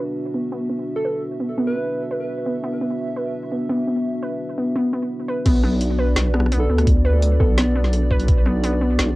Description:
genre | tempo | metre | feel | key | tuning
half-time drum and bass | 170 BPM | 4/4 | half-time | B minor | A4 = 439 Hz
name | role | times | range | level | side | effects
dark analog pad | sustained chords | 0.0-9.2 s | B3 to E5 | -28 LUFS | equal | chorus, sidechain pumping, cassette tape
warbly dusty pluck | arpeggios | 0.0-9.1 s | B3 to B4 | -24 LUFS | equal | chorus, cassette tape, tape echo
soft struck synth lead | melody | 1.0-2.0, 6.6-8.1 s | A4 to D5 | -28 LUFS | right 1 dB | chorus, cassette tape, tape echo
deep soft wobble bass | bass | 5.5-9.2 s | B1 to D2 | -19 LUFS | equal | chorus
drum and bass drum kit | drums | 5.5-9.1 s | crash cymbal, hi-hat, rim click, snare drum | -26 LUFS | equal | overdrive, cassette tape
electronic kick drum | drums | 5.5-8.4 s | none | -18 LUFS | equal | cassette tape
room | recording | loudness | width
light reverb | home recording on cassette | -18 LUFS | side -19 dB against mid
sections
0.0-5.5 A section; 5.5-9.2 B section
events
filter sweep on synth pluck 0.0-5.5; drop 5.5-9.2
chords
0.0 Bm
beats
0.16 0.52 0.87 | 1.22 1.58 1.93 2.28 | 2.63 2.99 3.34 3.69 | 4.05 4.40 4.75 5.11 | 5.46 5.81 6.16 6.52 | 6.87 7.22 7.58 7.93 | 8.28 8.63 8.99

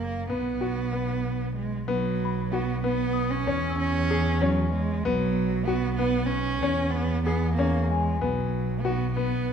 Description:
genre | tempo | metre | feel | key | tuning
contemporary instrumental, chamber music in an uneven meter | 190 BPM (eighths) | 5/8 | straight | B major | A4 = 440 Hz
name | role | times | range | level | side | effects
warm cello | melody | 0.0-9.5 s | F#3 to C#4 | -29 LUFS | right 6 dB | none
warm double bass | bass | 0.0-9.5 s | F#1 to E2 | -28 LUFS | right 1 dB | none
clear grand piano | arpeggios | 0.3-9.5 s | B3 to G#4 | -29 LUFS | left 5 dB | none
celesta | texture | 2.2-4.8, 7.9-8.5 s | G#5 to E6 | -36 LUFS | left 7 dB | none
room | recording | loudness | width
moderate scoring stage reverb, RT60 1.9 s | minimal, uncompressed stereo recording | -24 LUFS | side -7 dB against mid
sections
0.0-1.9 A section; 1.9-9.5 B section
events
none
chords
0.3 B5; 3.5 E6; 5.0 B5; 6.6 E6; 8.2 B5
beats
| 0.29 0.61 0.93 1.25 1.57 | 1.89 2.21 2.52 2.84 3.16 | 3.47 3.79 4.10 4.42 4.73 | 5.04 5.36 5.67 5.99 6.30 | 6.62 6.93 7.25 7.57 7.89 | 8.21 8.52 8.84 9.16 9.47

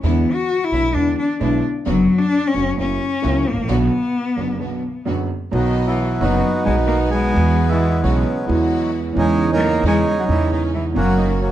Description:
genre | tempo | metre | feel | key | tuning
tango | 132 BPM | 4/4 | rubato | B minor, B major from 5.5 s | A4 = 438 Hz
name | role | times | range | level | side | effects
clear cello | second line | 0.0-11.5 s | C#3 to F#4 | -21 LUFS | left 3 dB | none
warm concert grand piano | accompaniment | 0.0-11.5 s | F#1 to F#4 | -22 LUFS | right 3 dB | none
clear studio string section | stabs | 0.0-11.5 s | G#3 to D#5 | -31 LUFS | right 2 dB | none
upright bass | bass | 0.0-11.5 s | F#1 to E2 | -21 LUFS | right 1 dB | none
bandoneon | melody | 5.5-11.5 s | F#3 to A#4 | -20 LUFS | right 1 dB | plate reverb, tape echo
room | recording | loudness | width
wet club reverb, RT60 0.8 s | dark, warm production | -16 LUFS | side -12 dB against mid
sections
0.0-5.5 A section; 5.5-11.5 B section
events
cello solo 0.0-5.5; break 4.6-5.5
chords
0.0 E7; 1.9 Bm/F#; 2.8 F#7; 3.7 Bm; 5.5 B; 7.4 Eadd9; 9.2 C#madd9/E; 11.0 F#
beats
| 0.04 0.50 0.96 1.41 | 1.87 2.32 2.78 3.23 | 3.69 4.14 4.60 5.07 | 5.53 5.99 6.45 6.90 | 7.36 7.81 8.27 8.72 | 9.17 9.62 10.07 10.52 | 10.97 11.42

